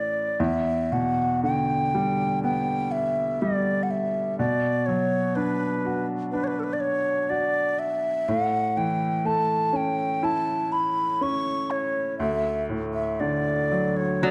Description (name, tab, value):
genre	celtic folk, Celtic slow air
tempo	61 BPM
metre	4/4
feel	rubato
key	E dorian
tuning	A4 = 439 Hz
part	bright baroque flute	melody	0.0-14.3 s	A4 to C#6	-28 LUFS	equal	none
part	bright upright piano	accompaniment	0.0-14.3 s	D2 to F#4	-29 LUFS	equal	none
part	lap resonator guitar	second line	14.2-14.3 s	F#3	-23 LUFS	equal	none
room	moderate recital hall reverb, RT60 1.3 s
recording	dark, warm production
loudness	-25 LUFS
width	mono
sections	0.4-14.3 A section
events	none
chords	0.4 Em7; 4.4 Bm; 8.3 A; 12.2 D